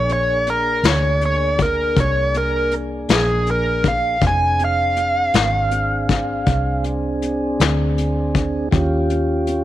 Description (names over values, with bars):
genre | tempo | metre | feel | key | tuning
slow blues | 53 BPM (dotted quarters) | 12/8 | straight | Bb mixolydian | A4 = 440 Hz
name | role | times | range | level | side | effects
dark smooth lead guitar | melody | 0.0-6.8 s | Ab4 to Ab5 | -19 LUFS | right 1 dB | overdrive
mellow tonewheel organ | sustained chords | 0.0-9.6 s | Bb3 to Ab4 | -24 LUFS | equal | slow rotary speaker
vintage muted fingered electric bass | bass | 0.0-9.6 s | F1 to Eb2 | -22 LUFS | right 1 dB | none
vintage brush drum kit | drums | 0.1-9.6 s | hi-hat, kick drum, snare drum | -20 LUFS | left 4 dB | none
room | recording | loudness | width
light reverb, small room ambience | 1960s-style stereo | -16 LUFS | side -13 dB against mid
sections
0.0-9.6 A section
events
lead electric guitar solo 0.0-9.6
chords
0.0 Bb7; 8.7 Eb7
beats
0.84 1.97 3.09 | 4.22 5.35 6.47 7.60 | 8.73